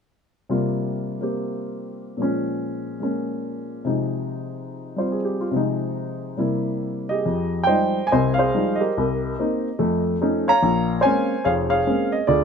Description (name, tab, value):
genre	solo jazz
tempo	143 BPM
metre	4/4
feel	swing 66% on 8ths, rubato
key	F minor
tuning	A4 = 439 Hz
part	warm baby grand piano	solo	0.5-12.4 s	F1 to Bb5	-20 LUFS	equal	none
room	light reverb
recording	close, detailed microphones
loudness	-20 LUFS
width	side -6 dB against mid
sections	0.5-7.2 A section; 7.2-12.4 B section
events	none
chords	0.5 C7sus4; 2.2 Bbm7; 3.8 Fm7/C; 6.4 C7; 7.2 Fm9; 8.9 Cm7; 9.8 F7b13; 10.6 Bbm9